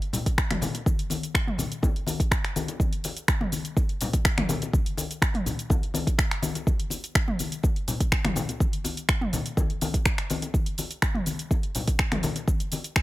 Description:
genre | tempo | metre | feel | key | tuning
house | 124 BPM | 4/4 | straight | none | none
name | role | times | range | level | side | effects
deep house drum kit | drums | 0.0-13.0 s | finger snaps, hi-hat, shaker, toms | -28 LUFS | equal | overdrive
congas | percussion | 0.1-12.8 s | none | -31 LUFS | left 3 dB | none
electronic kick drum | drums | 0.3-13.0 s | none | -25 LUFS | equal | none
room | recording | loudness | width
digital ambience | none | -24 LUFS | side -17 dB against mid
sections
0.0-13.0 A section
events
none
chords
none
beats
0.38 | 0.86 1.35 1.83 2.32 | 2.80 3.28 3.77 4.25 | 4.74 5.22 5.70 6.19 | 6.67 7.16 7.64 8.12 | 8.61 9.09 9.57 10.06 | 10.54 11.03 11.51 11.99 | 12.48 12.96

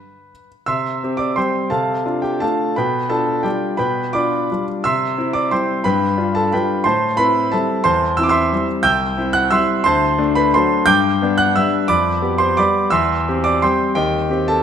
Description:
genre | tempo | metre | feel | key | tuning
classical, piano waltz | 160-190 BPM | 3/4 | rubato | C major, G major from 8.8 s | A4 = 440 Hz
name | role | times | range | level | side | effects
clear grand piano | solo | 0.0-14.6 s | C2 to G6 | -15 LUFS | equal | none
room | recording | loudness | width
moderate concert hall reverb, RT60 1.9 s | none | -15 LUFS | side -8 dB against mid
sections
0.7-14.6 A section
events
none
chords
0.0 N.C.; 0.7 C; 1.7 Dm7/C; 2.8 G7/B; 4.8 C; 5.8 G7; 6.9 Am7; 8.8 C; 9.9 D7; 10.9 G; 11.9 G7/F; 12.9 C/E; 14.0 Cm/Eb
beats
0.30 | 0.67 1.01 1.37 | 1.71 2.06 2.42 | 2.77 3.11 3.46 | 3.80 4.14 4.49 | 4.83 5.17 5.51 | 5.85 6.18 6.53 | 6.86 7.19 7.53 | 7.85 8.18 8.52 | 8.85 9.18 9.52 | 9.85 10.19 10.53 | 10.88 11.21 11.56 | 11.89 12.23 12.58 | 12.92 13.27 13.62 | 13.96 14.30

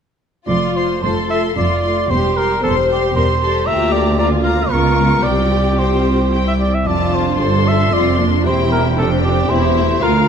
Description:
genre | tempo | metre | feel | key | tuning
quick classical-period movement for symphony orchestra | 114 BPM | 3/4 | rubato | F major | A4 = 440 Hz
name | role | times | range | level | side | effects
rich studio violin section | melody | 0.5-10.3 s | E5 to Db6 | -24 LUFS | left 6 dB | none
mellow cor anglais | second line | 0.5-10.3 s | G4 to F5 | -19 LUFS | right 2 dB | none
warm studio violin section | second line | 0.5-10.1 s | C4 to C5 | -22 LUFS | left 5 dB | none
warm studio viola section | accompaniment | 0.5-10.3 s | G3 to G4 | -21 LUFS | right 1 dB | none
dark studio cello section | bass | 0.5-10.3 s | C2 to G2 | -20 LUFS | right 1 dB | none
dark studio double bass section | bass | 0.5-10.3 s | E1 to D2 | -20 LUFS | right 2 dB | none
room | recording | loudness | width
moderate scoring stage reverb, RT60 1.8 s | dark, warm production | -13 LUFS | side -7 dB against mid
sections
0.5-10.3 A section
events
none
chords
0.5 F; 2.1 C/E; 3.7 Bb/D; 4.7 Db7; 5.2 Csus4; 6.3 C; 6.9 F; 8.5 C/E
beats
| 0.48 1.03 1.56 | 2.10 2.63 3.15 | 3.66 4.18 4.70 | 5.24 5.78 6.32 | 6.87 7.41 7.94 | 8.46 8.98 9.51 | 10.03

